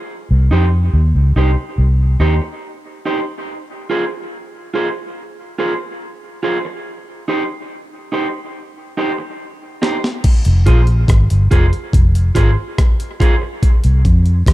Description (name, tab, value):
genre	dub reggae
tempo	71 BPM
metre	4/4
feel	straight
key	F minor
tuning	A4 = 440 Hz
part	vintage muted fingered electric bass	bass	0.3-2.4, 10.5-14.5 s	F1 to F2	-12 LUFS	equal	none
part	electric guitar at the edge of break-up	accompaniment	0.5-13.5 s	Eb4 to C5	-22 LUFS	right 2 dB	dub echo
part	breakbeat sampler-style drum kit	drums	9.8-14.5 s	crash cymbal, hi-hat, kick drum, rim click, snare drum	-13 LUFS	equal	none
room	digital ambience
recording	dark, warm production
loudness	-13 LUFS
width	side -16 dB against mid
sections	0.0-10.2 A section; 10.2-14.5 B section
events	break 3.5-10.2; drum fill 9.4-10.2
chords	0.1 Cm; 3.5 Fm; 6.9 Cm; 10.2 Fm; 13.6 N.C.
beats	| 0.08 0.93 1.78 2.62 | 3.47 4.32 5.16 6.01 | 6.86 7.70 8.55 9.39 | 10.24 11.09 11.93 12.78 | 13.62 14.47